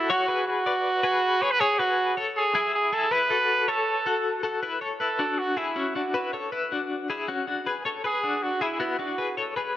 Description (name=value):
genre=indie pop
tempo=158 BPM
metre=4/4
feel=straight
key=A major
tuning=A4 = 440 Hz
part: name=clear trumpet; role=melody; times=0.0-9.3 s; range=E4 to C#5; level=-25 LUFS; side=right 2 dB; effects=none
part: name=twelve-string electric guitar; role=arpeggios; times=0.0-9.8 s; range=B3 to D5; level=-27 LUFS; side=left 4 dB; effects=tremolo
room=moderate plate reverb, RT60 2.6 s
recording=rough home demo mix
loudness=-23 LUFS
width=side -12 dB against mid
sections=0.0-4.6 A section; 4.6-9.8 B section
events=none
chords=0.1 Bm; 1.6 F#sus2; 3.1 A; 4.6 Aadd9 (rootless); 7.7 E (rootless)